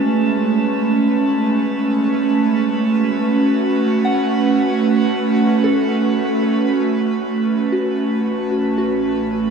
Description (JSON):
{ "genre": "ambient", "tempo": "57 BPM", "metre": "3/4", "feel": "straight", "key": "A major", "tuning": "A4 = 441 Hz", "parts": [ { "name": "airy breathy pad", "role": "sustained chords", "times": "0.0-9.5 s", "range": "G#3 to B4", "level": "-16 LUFS", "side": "right 2 dB", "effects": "chorus" }, { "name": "soft synth bell", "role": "arpeggios", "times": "0.0-9.5 s", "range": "F#4 to F#5", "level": "-26 LUFS", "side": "left 2 dB", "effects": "chorus, analog delay" }, { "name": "drifting glass-harmonics texture", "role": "texture", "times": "0.0-9.5 s", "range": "A5", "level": "-32 LUFS", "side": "left 3 dB", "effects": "chorus, built-in reverb" }, { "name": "round analog bass", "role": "bass", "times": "7.2-9.5 s", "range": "A1", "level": "-43 LUFS", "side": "equal", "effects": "none" } ], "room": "wet huge ambient reverb, RT60 8.1 s", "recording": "dreamy mix soaked in reverb, small room ambience", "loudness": "-15 LUFS", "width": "side -6 dB against mid", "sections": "0.0-7.2 A section; 7.2-9.5 B section", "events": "fade-out on synth texture 0.0-7.2", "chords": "0.0 Amaj9; 7.2 Aadd9" }